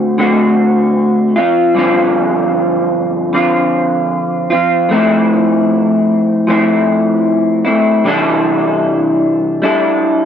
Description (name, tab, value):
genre	indie pop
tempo	76 BPM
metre	4/4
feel	straight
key	F major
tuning	A4 = 435 Hz
part	electric guitar through a small old amp	solo	0.0-10.3 s	G2 to A4	-10 LUFS	equal	analog chorus, vibrato effect
room	light reverb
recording	dry, close 1970s-style studio recording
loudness	-10 LUFS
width	side -8 dB against mid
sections	0.0-10.3 A section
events	none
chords	0.0 D7; 1.4 G7sus4; 4.9 Fmaj7; 8.1 C69